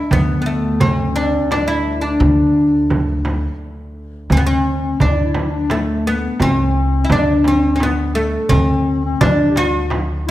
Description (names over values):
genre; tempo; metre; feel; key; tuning
Arabic maqam ensemble; 86 BPM; 3/4; straight; D maqam rast; A4 = 440 Hz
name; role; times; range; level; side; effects
oud; melody; 0.0-10.3 s; A3 to F#4-50c; -18 LUFS; equal; none
muted double bass; drone; 0.0-4.4 s; D2; -28 LUFS; equal; none
dark clarinet; second line; 0.1-10.3 s; A3 to G4; -23 LUFS; left 6 dB; none
upright bass; bass; 0.1-10.3 s; C2+50c to D2; -19 LUFS; equal; none
darbuka; percussion; 0.1-10.3 s; none; -23 LUFS; right 2 dB; none
frame drum; percussion; 0.1-10.1 s; none; -22 LUFS; right 2 dB; none
room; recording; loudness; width
moderate recital hall reverb, RT60 1.6 s; none; -14 LUFS; side -14 dB against mid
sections
0.0-4.3 A section; 4.3-10.3 B section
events
break 3.6-4.3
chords
none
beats
| 0.12 0.82 1.52 | 2.22 2.92 3.62 | 4.31 5.01 5.71 | 6.41 7.11 7.81 | 8.51 9.21 9.91